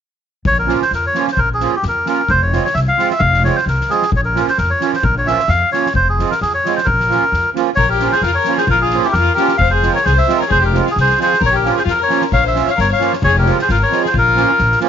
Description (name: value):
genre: balkan folk, Balkan wedding band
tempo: 132 BPM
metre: 2/4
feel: swing 56% on 16ths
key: Bb dorian sharp4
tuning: A4 = 440 Hz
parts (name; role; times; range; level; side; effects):
- melodica; melody; 0.5-14.8 s; G4 to F5; -15 LUFS; equal; none
- upright bass; bass; 0.5-14.7 s; F1 to F2; -18 LUFS; left 1 dB; none
- soft-mallet drum kit; percussion; 0.5-14.9 s; kick drum, snare drum; -25 LUFS; left 3 dB; none
- accordion; accompaniment; 0.7-14.9 s; F3 to F4; -20 LUFS; right 13 dB; light tremolo tuning
- warm violin; second line; 7.8-14.8 s; E4 to Db5; -20 LUFS; left 14 dB; none
room: light reverb, small room ambience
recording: 1960s-style stereo with parts hard left and right, nothing above 7.5 kHz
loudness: -12 LUFS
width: side -8 dB against mid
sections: 0.4-7.8 A section; 7.8-14.9 A section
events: none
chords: 0.4 Bbm; 2.3 Fm; 4.1 Bbm; 5.9 Fm; 6.9 Bbm; 9.6 Fm; 11.4 Bbm; 13.2 Fm; 14.1 Bbm